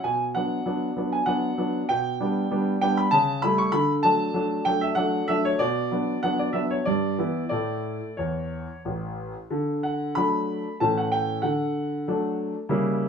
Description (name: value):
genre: classical-period piano sonatina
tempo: 96 BPM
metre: 3/4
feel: rubato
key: D major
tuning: A4 = 439 Hz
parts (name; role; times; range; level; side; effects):
- clear concert grand piano; solo; 0.0-13.1 s; A1 to C#6; -23 LUFS; equal; none
room: moderate stone room reverb, RT60 1.0 s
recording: small room ambience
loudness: -23 LUFS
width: side -6 dB against mid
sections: 0.0-9.5 A section; 9.5-13.1 B section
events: none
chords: 0.0 Bm; 1.9 G/B; 3.1 A7/C#; 3.7 D; 5.6 Bm; 6.9 Em7/G; 7.5 A; 9.5 D; 10.8 A7; 11.4 D